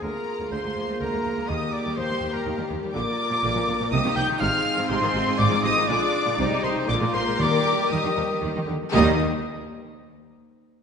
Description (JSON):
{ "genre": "quick classical-period movement for symphony orchestra", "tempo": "122 BPM", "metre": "3/4", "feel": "straight", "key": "Eb major", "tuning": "A4 = 439 Hz", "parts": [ { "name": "rich studio violin section", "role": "melody", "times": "0.0-9.2 s", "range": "Bb5 to G6", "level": "-29 LUFS", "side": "left 1 dB", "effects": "none" }, { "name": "bright oboe", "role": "second line", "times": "0.0-9.2 s", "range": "Bb4 to G5", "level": "-33 LUFS", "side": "right 1 dB", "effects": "none" }, { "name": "clear clarinet", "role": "second line", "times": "0.0-9.1 s", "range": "Bb4 to G5", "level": "-33 LUFS", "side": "left 1 dB", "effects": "none" }, { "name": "concert flute", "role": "second line", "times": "0.0-9.2 s", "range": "Eb5 to G6", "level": "-30 LUFS", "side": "left 2 dB", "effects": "none" }, { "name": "rich chamber violin section", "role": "second line", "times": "0.0-9.2 s", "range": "Eb4 to Bb4", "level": "-32 LUFS", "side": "left 4 dB", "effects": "none" }, { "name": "clear symphonic viola section", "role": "accompaniment", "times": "0.0-9.2 s", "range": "C3 to Eb4", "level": "-31 LUFS", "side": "right 2 dB", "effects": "none" }, { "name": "dark French horn section", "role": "sustained chords", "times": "0.0-9.1 s", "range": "G3 to Bb4", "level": "-29 LUFS", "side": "left 3 dB", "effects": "none" }, { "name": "rich symphonic cello section", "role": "bass", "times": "0.0-9.2 s", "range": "D2 to Eb3", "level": "-32 LUFS", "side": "right 2 dB", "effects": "none" }, { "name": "rich symphonic double bass section", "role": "bass", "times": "0.0-9.2 s", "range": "Ab1 to Eb2", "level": "-29 LUFS", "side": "right 4 dB", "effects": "none" }, { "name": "timpani", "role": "percussion", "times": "1.5-2.2, 7.4-9.2 s", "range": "Eb3", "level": "-31 LUFS", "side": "left 1 dB", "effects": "none" } ], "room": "wet scoring stage reverb, RT60 1.9 s", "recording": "nothing above 10.4 kHz", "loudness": "-21 LUFS", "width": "side -6 dB against mid", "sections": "0.0-8.9 A section; 8.9-10.5 B section", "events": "none", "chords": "0.0 Bb7/D; 1.5 Eb; 3.0 Bb; 3.9 Cm7; 4.4 Fm7/Ab; 5.9 Bb7 (rootless); 6.4 Cm; 6.9 Bb7; 7.4 Eb", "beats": "| 0.04 0.52 1.01 | 1.50 1.98 2.47 | 2.95 3.44 3.93 | 4.42 4.90 5.39 | 5.88 6.38 6.88 | 7.39 7.91 8.42 | 8.94" }